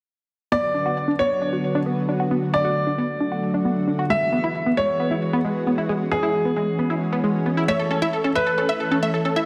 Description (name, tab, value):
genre	trance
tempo	134 BPM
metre	4/4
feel	straight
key	B dorian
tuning	A4 = 441 Hz
part	warm grand piano	second line	0.5-8.9 s	G#4 to E5	-26 LUFS	equal	tape echo
part	tight sequenced synth	arpeggios	0.5-9.4 s	G#3 to F#4	-27 LUFS	equal	chorus, tape echo
part	unison pluck	melody	7.7-9.4 s	A4 to E5	-26 LUFS	equal	analog chorus
room	wet recital hall reverb, RT60 1.4 s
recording	dense, heavily limited modern master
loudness	-22 LUFS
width	mono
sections	0.5-9.5 A section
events	filter sweep on synth arpeggio sound 0.5-9.5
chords	0.5 Bm; 4.1 Eadd9; 7.7 A